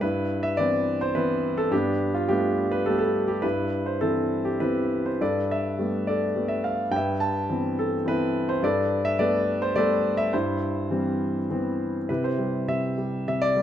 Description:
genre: classical, lyrical solo piano.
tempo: 105 BPM.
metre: 3/4.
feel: rubato.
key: C major.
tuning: A4 = 440 Hz.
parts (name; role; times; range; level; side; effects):
warm concert grand piano; solo; 0.0-13.6 s; G2 to A5; -23 LUFS; equal; none.
room: moderate recital hall reverb, RT60 1.7 s.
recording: none.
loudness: -23 LUFS.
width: side -10 dB against mid.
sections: 0.0-12.1 A section; 12.1-13.6 B section.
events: none.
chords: 0.0 Cmaj7/G; 1.7 Gadd9; 3.4 Cmaj7/G; 5.2 Gadd9; 6.9 Cmaj7/G; 8.6 Gadd9; 10.3 Cmaj7/G; 12.1 C.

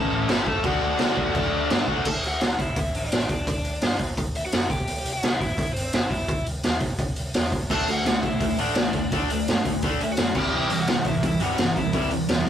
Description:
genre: punk rock.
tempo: 170 BPM.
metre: 4/4.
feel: straight.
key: D mixolydian.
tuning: A4 = 440 Hz.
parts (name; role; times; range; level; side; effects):
biting lead guitar; melody; 0.0-12.1 s; C4 to A5; -30 LUFS; left 1 dB; overdrive.
distorted electric guitar; riff; 0.0-2.1, 7.7-12.5 s; A2 to F#4; -24 LUFS; left 1 dB; overdrive.
overdriven picked electric bass; bass; 0.0-12.5 s; G1 to D3; -34 LUFS; equal; none.
raw garage drum kit; drums; 0.3-12.5 s; crash cymbal, hi-hat, kick drum, snare drum; -24 LUFS; equal; none.
room: light reverb.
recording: rough rehearsal-room recording, warm saturation.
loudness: -21 LUFS.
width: side -10 dB against mid.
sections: 0.0-2.1 A section; 2.1-12.5 B section.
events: none.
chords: 0.0 A; 0.6 D; 4.7 C; 7.7 D; 10.4 C.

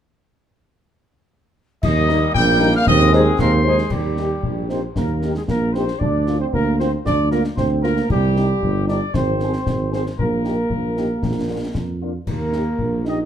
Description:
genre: military-style march for wind band.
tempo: 115 BPM.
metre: 2/4.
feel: straight.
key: Eb major.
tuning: A4 = 440 Hz.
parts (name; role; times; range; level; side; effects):
dark trumpet section; melody; 1.8-13.2 s; G4 to G5; -24 LUFS; left 2 dB; none.
bright piccolo; second line; 1.8-3.9 s; C6 to G6; -24 LUFS; left 2 dB; none.
bright trombone section; sustained chords; 1.8-3.7 s; G3 to C4; -26 LUFS; right 1 dB; none.
mellow tuba; bass; 1.8-13.2 s; G1 to F2; -20 LUFS; right 2 dB; none.
clash cymbals, concert bass drum and concert snare drum; drums; 1.8-13.2 s; none; -26 LUFS; left 2 dB; none.
mellow French horn section; accompaniment; 2.1-13.1 s; F3 to C5; -25 LUFS; left 3 dB; none.
warm euphonium; second line; 2.4-13.3 s; G3 to Eb4; -23 LUFS; right 3 dB; none.
room: moderate large studio reverb, RT60 1.0 s.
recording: dark, warm production.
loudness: -17 LUFS.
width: side -9 dB against mid.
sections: 1.8-3.9 A section; 3.9-13.3 B section.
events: none.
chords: 1.8 Eb; 2.9 Ab/Eb; 3.9 Eb; 6.0 Bb/D; 8.1 Cm; 9.1 Fm/Ab; 10.2 Eb/Bb; 11.2 Bb; 12.3 Eb.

